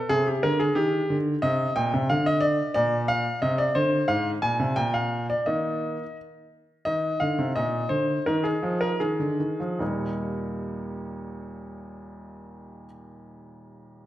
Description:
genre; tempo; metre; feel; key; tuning
classical-period piano sonatina; 72-92 BPM; 2/4; straight; Eb major; A4 = 445 Hz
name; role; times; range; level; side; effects
clear baby grand piano; solo; 0.0-14.1 s; Eb2 to Ab5; -24 LUFS; equal; none
room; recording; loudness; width
moderate recital hall reverb, RT60 1.5 s; none; -23 LUFS; side -14 dB against mid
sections
0.0-6.9 A section; 6.9-9.8 B section; 9.8-13.1 C section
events
slowing down 6.2-9.8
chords
0.1 Cm; 1.4 Eb6; 2.1 N.C.; 3.4 Cmadd9; 4.1 Fm/Ab; 4.8 N.C.; 5.5 Eb5; 8.3 Ab5/Eb; 9.8 Eb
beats
| 0.10 0.76 | 1.42 2.08 | 2.75 3.42 | 4.09 4.78 | 5.47 6.17 | 6.86 7.55 | 8.27 9.01 | 9.82 10.64 | 11.46 12.28

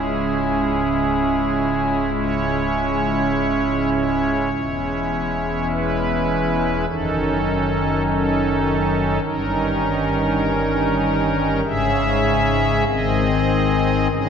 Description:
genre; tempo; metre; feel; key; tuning
classical, chorale-style piece for pipe organ; 50 BPM; 4/4; straight; C# minor; A4 = 440 Hz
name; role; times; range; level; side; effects
pipe organ, strings celeste; solo; 0.0-14.3 s; C#1 to E5; -18 LUFS; equal; none
room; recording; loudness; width
wet concert hall reverb, RT60 2.2 s; none; -18 LUFS; side -7 dB against mid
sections
0.0-14.3 A section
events
none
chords
0.0 C#m; 4.5 C#m/E; 6.9 D#m7b5/F#; 9.2 D#7/G; 11.6 C#m/G#; 12.9 G#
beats
0.91 2.14 3.34 | 4.53 5.72 6.89 8.06 | 9.23 10.42 11.65 12.88 | 14.12

